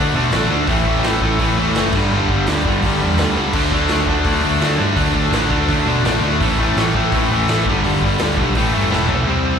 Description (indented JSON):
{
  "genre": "punk rock",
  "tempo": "168 BPM",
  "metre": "4/4",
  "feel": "straight",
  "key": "A mixolydian",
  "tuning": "A4 = 441 Hz",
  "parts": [
    { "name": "cranked stack guitar", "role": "riff", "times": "0.0-9.6 s", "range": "G2 to D4", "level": "-21 LUFS", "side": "right 13 dB", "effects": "overdrive, slapback echo" },
    { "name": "distorted electric guitar", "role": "riff", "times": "0.0-9.6 s", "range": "G2 to D4", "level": "-20 LUFS", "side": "left 12 dB", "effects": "overdrive, slapback echo" },
    { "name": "fuzz guitar", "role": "riff", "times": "0.0-9.6 s", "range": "G2 to F#4", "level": "-25 LUFS", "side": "equal", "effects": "distortion, slapback echo" },
    { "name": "overdriven picked electric bass", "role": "bass", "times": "0.0-9.6 s", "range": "E1 to B2", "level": "-21 LUFS", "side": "right 1 dB", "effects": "none" },
    { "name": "raw garage drum kit", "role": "drums", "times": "0.3-9.2 s", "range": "crash cymbal, hi-hat, kick drum, snare drum, toms", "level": "-22 LUFS", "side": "right 1 dB", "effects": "none" }
  ],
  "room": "little or no reverb",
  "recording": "live gig heard through the venue's PA, club reverb",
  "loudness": "-14 LUFS",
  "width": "side -7 dB against mid",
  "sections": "0.0-9.3 A section",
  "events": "drum fill 8.9-9.3",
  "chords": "0.0 D; 0.7 A; 1.9 G; 3.5 D; 6.4 A; 7.7 G; 8.6 A"
}